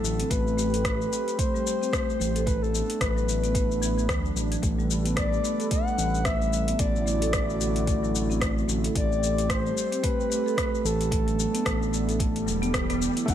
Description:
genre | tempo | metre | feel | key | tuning
organic downtempo | 111 BPM | 4/4 | swing 58% on 16ths | unclear | A4 = 440 Hz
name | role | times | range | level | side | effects
breathy flute-like synth lead | melody | 0.0-12.7 s | A4 to F#5 | -30 LUFS | left 2 dB | chorus, digital delay
warm analog pad | sustained chords | 0.0-13.3 s | D3 to F#5 | -34 LUFS | right 2 dB | wide subtle chorus, sidechain pumping
marimba with soft mallets | arpeggios | 0.0-13.3 s | E3 to A4 | -30 LUFS | right 1 dB | digital delay
smooth gliding synth bass | bass | 0.0-13.3 s | E1 to D2 | -29 LUFS | equal | none
afro-pop drum kit | drums | 0.0-13.3 s | hi-hat, rim click, shaker | -32 LUFS | left 2 dB | overdrive
electronic kick drum | drums | 0.3-13.3 s | none | -30 LUFS | equal | overdrive
swell and impact | sound effects | 12.4-13.3 s | none | -34 LUFS | equal | none
felt-muted upright piano | accompaniment | 13.3 s | A3 to F#5 | -28 LUFS | left 2 dB | sidechain pumping
room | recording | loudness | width
light reverb, digital ambience | none | -23 LUFS | side -10 dB against mid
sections
0.0-13.3 A section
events
swell 12.4-13.3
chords
0.3 Am7; 2.5 Bm7/A; 4.6 Gmaj7/A; 6.8 D/A; 9.0 Am7; 11.1 Bm7/A

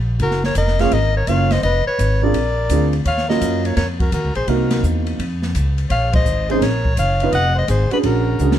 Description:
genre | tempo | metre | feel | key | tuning
jazz, small-group swing and bop | 168 BPM | 4/4 | swing 66% on 8ths | Bb minor | A4 = 437 Hz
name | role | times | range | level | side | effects
upright bass | bass | 0.0-8.6 s | F1 to Gb2 | -19 LUFS | equal | none
breathy soprano saxophone | melody | 0.2-8.6 s | Bb4 to Gb5 | -21 LUFS | left 3 dB | plate reverb
breathy trumpet | second line | 0.2-8.6 s | Gb4 to Eb5 | -27 LUFS | right 4 dB | none
open jazz drum kit | drums | 0.2-8.6 s | hi-hat, kick drum, ride cymbal, snare drum | -25 LUFS | equal | none
warm upright piano | accompaniment | 0.8-8.6 s | Bb3 to Cb5 | -20 LUFS | right 4 dB | none
room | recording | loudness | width
light reverb | dark, warm production | -15 LUFS | side -11 dB against mid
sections
0.0-8.6 A section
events
band accent 6.1; drum fill 8.4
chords
0.2 Gbmaj9; 1.6 Fm; 2.3 Bb7; 3.1 Ebm7; 4.5 Cm7b5; 5.2 Db; 5.9 Bbm11; 7.3 Fm7; 8.0 Bb7alt

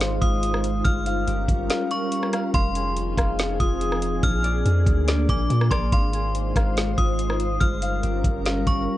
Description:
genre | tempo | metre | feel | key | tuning
hip hop, atmospheric cloud-rap | 142 BPM | 4/4 | half-time | unclear | A4 = 439 Hz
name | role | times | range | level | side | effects
glassy FM pad | sustained chords | 0.0-9.0 s | F3 to C5 | -28 LUFS | left 1 dB | ensemble chorus, built-in reverb
concert harp | arpeggios | 0.0-9.0 s | D4 to F5 | -32 LUFS | left 3 dB | low-pass filter, tape echo
long sustained 808-style bass | bass | 0.0-8.9 s | F1 to Bb2 | -24 LUFS | equal | none
smooth R&B drum kit | drums | 0.0-8.8 s | hi-hat, kick drum, rim click, snare drum | -24 LUFS | equal | none
metallic FM bell | melody | 0.2-8.9 s | C6 to F6 | -29 LUFS | equal | chorus, low-pass filter, tape echo
room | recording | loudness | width
digital ambience | worn, warbling old tape, cassette tape, warbly pitch drift, nothing above 10.3 kHz | -20 LUFS | side -15 dB against mid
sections
0.0-9.0 A section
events
kick muted 1.7-2.5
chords
0.0 Ab6; 0.9 Gm7b5; 2.5 Fm7; 4.2 Bb7; 5.9 Ab6; 7.6 Gm7b5

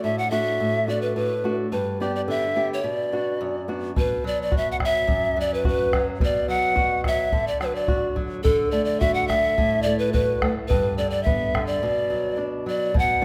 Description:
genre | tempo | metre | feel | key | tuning
andean folk, Andean ensemble | 107 BPM | 2/4 | straight | B minor | A4 = 439 Hz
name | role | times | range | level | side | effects
polished pan flute | melody | 0.0-13.2 s | A4 to F#5 | -25 LUFS | equal | none
flamenco guitar | accompaniment | 0.0-13.2 s | F#2 to G4 | -29 LUFS | equal | none
bombo | percussion | 4.0-13.1 s | none | -28 LUFS | equal | none
room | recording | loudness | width
moderate concert hall reverb, RT60 2.3 s | none | -23 LUFS | mono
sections
0.0-4.0 A section; 4.0-12.9 A section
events
break 11.8-12.9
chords
0.0 D; 1.7 G; 2.8 Bm; 8.4 D; 10.7 G; 11.8 Bm

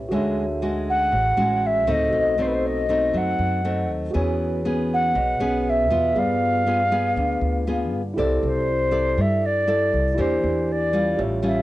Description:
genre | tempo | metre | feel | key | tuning
bossa nova | 119 BPM | 4/4 | straight | C major from 8.2 s | A4 = 440 Hz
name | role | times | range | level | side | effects
nylon-string guitar | accompaniment | 0.0-11.6 s | A2 to D5 | -25 LUFS | left 1 dB | cassette tape
tine electric piano | accompaniment | 0.0-11.6 s | E4 to E5 | -29 LUFS | right 2 dB | medium stereo tremolo, cassette tape
upright bass | bass | 0.0-11.6 s | A1 to G2 | -27 LUFS | equal | none
breathy mellow concert flute | melody | 0.9-11.6 s | B4 to F#5 | -22 LUFS | equal | cassette tape
room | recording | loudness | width
moderate studio reverb, RT60 0.5 s | home recording on cassette, nothing above 10.8 kHz | -19 LUFS | side -16 dB against mid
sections
0.0-8.2 A section; 8.2-11.6 B section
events
flute solo 8.2-11.6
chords
0.1 Dmaj9#11; 2.1 B7b9; 4.1 E6; 6.2 G7b9; 8.2 C69; 10.2 Em7b5

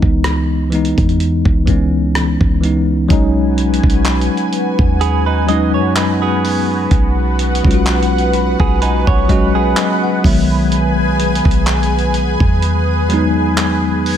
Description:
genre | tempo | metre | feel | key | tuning
contemporary R&B | 63 BPM | 4/4 | swing 54% on 16ths | B major | A4 = 441 Hz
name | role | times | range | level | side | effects
bell-like tine electric piano | accompaniment | 0.0-14.2 s | D#3 to B5 | -16 LUFS | left 2 dB | medium stereo tremolo
clean 808-style bass | bass | 0.0-14.2 s | B1 to F#2 | -17 LUFS | equal | none
dusty soul sampler-style drum kit | drums | 0.0-14.2 s | handclaps, hi-hat, kick drum, rim click | -17 LUFS | equal | none
lush unison pad | sustained chords | 3.1-14.2 s | B3 to G#5 | -20 LUFS | equal | chorus, phaser, sidechain pumping
direct-recorded clean electric guitar | arpeggios | 5.0-10.2 s | B3 to D#5 | -21 LUFS | right 9 dB | ping-pong delay
room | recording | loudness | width
light reverb, digital ambience | none | -12 LUFS | side -10 dB against mid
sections
0.0-3.1 A section; 3.1-14.2 B section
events
tine electric piano fill 7.9-10.7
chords
0.0 C#m7; 3.1 B6; 10.2 Emaj7

